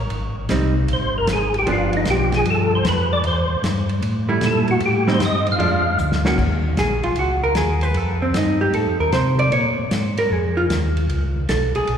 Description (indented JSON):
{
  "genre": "soul jazz organ trio",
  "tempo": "153 BPM",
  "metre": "4/4",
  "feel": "swing 67% on 8ths",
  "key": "unclear",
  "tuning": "A4 = 440 Hz",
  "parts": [
    { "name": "mellow tonewheel organ", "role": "bass", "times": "0.0-12.0 s", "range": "G1 to C3", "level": "-21 LUFS", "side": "equal", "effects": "chorus vibrato, slow rotary speaker" },
    { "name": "warm soul drum kit", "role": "drums", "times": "0.1-12.0 s", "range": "crash cymbal, hi-hat, kick drum, ride cymbal, snare drum", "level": "-27 LUFS", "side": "left 1 dB", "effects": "none" },
    { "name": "vintage hollow-body jazz guitar", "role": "accompaniment", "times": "0.5-12.0 s", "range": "Eb3 to D5", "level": "-22 LUFS", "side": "right 1 dB", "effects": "none" },
    { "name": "percussive tonewheel organ", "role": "melody", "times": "0.9-6.0 s", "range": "Eb4 to F5", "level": "-21 LUFS", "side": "equal", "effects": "slow rotary speaker, chorus vibrato" }
  ],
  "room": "wet church reverb, RT60 3.1 s",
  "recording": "recorded in a church or concert hall",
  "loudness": "-17 LUFS",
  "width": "side -8 dB against mid",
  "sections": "0.0-6.4 A section; 6.4-12.0 A section",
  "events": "tonewheel organ solo 0.0-6.4; drum fill 6.0-6.4; hollow-body jazz guitar solo 6.4-12.0",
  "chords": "0.1 Abmaj7; 1.7 G7; 3.2 C6; 4.8 Am7b5; 5.6 Bb7; 6.4 Eb5; 8.0 F7; 9.5 Bbm7; 11.1 Db5"
}